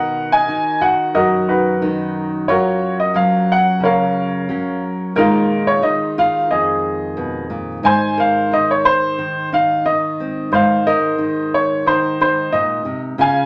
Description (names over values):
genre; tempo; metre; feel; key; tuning
acoustic folk-pop ballad; 90 BPM; 4/4; straight; unclear; A4 = 441 Hz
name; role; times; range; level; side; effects
clear upright piano; melody; 0.0-13.5 s; D#4 to Ab5; -18 LUFS; equal; none
nylon-string guitar; accompaniment; 0.0-13.5 s; F2 to Bb4; -23 LUFS; equal; none
room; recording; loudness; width
wet small room reverb, RT60 0.5 s; none; -17 LUFS; mono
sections
0.0-7.8 A section; 7.8-13.5 B section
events
none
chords
0.0 Bmaj7; 2.5 Gbmaj7; 5.2 Bb7sus4; 7.8 Abadd9